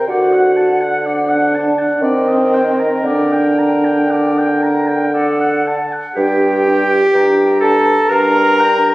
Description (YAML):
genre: classical, slow romantic movement for wind quintet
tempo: 56-64 BPM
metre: 3/4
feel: rubato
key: G minor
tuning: A4 = 440 Hz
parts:
  - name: silver concert flute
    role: melody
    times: 0.0-8.9 s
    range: F#5 to Bb5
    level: -19 LUFS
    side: left 2 dB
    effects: none
  - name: warm oboe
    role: second line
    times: 0.0-8.9 s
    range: D5 to Bb5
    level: -23 LUFS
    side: left 1 dB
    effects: none
  - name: clear clarinet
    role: accompaniment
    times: 0.0-8.9 s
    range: G4 to C5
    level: -18 LUFS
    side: right 1 dB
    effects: none
  - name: mellow French horn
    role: accompaniment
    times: 0.0-8.8 s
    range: C4 to F#4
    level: -16 LUFS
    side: equal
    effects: none
  - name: dark bassoon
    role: bass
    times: 0.0-8.9 s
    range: G2 to Eb3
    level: -18 LUFS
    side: right 1 dB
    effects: none
room: wet recital hall reverb, RT60 1.6 s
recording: recorded on a phone in the room, studio reverb, compression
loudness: -12 LUFS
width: side -18 dB against mid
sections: 0.0-6.2 A section; 6.2-8.9 B section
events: none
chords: 0.1 D7; 2.0 Ebmaj7; 3.0 Gm/D; 5.1 D; 6.2 Gm